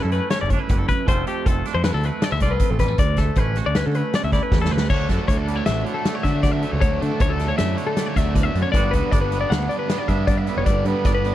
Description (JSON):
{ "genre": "math rock and midwest emo", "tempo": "156 BPM", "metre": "5/4", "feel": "straight", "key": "D major", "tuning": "A4 = 435 Hz", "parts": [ { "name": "twangy electric guitar", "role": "accompaniment", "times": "0.0-11.3 s", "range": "D2 to F#4", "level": "-28 LUFS", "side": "right 10 dB", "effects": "spring reverb" }, { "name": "twelve-string electric guitar", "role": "arpeggios", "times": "0.0-11.3 s", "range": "G4 to F#5", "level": "-25 LUFS", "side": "left 6 dB", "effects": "none" }, { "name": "growling picked electric bass", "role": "bass", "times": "0.0-11.3 s", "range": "F1 to D3", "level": "-23 LUFS", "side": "equal", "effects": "overdrive" }, { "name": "loose indie drum kit", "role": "drums", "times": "0.1-11.3 s", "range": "crash cymbal, hi-hat, kick drum, snare drum", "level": "-22 LUFS", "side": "equal", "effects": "none" }, { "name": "overdriven electric guitar", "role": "riff", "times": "4.9-11.3 s", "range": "G2 to D4", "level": "-28 LUFS", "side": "right 1 dB", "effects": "none" } ], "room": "small room ambience", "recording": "none", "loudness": "-18 LUFS", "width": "side -13 dB against mid", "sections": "0.0-4.9 A section; 4.9-11.3 B section", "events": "drum fill 4.5-4.9", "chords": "0.0 F#m7; 1.1 F; 3.0 Dmaj7; 4.9 Dmaj9; 8.7 Gmaj7", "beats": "0.31 0.69 | 1.08 1.46 1.84 2.23 2.61 | 2.99 3.37 3.76 4.14 4.52 | 4.91 5.29 5.67 6.06 6.44 | 6.83 7.21 7.59 7.98 8.36 | 8.75 9.13 9.52 9.90 10.29 | 10.67 11.05" }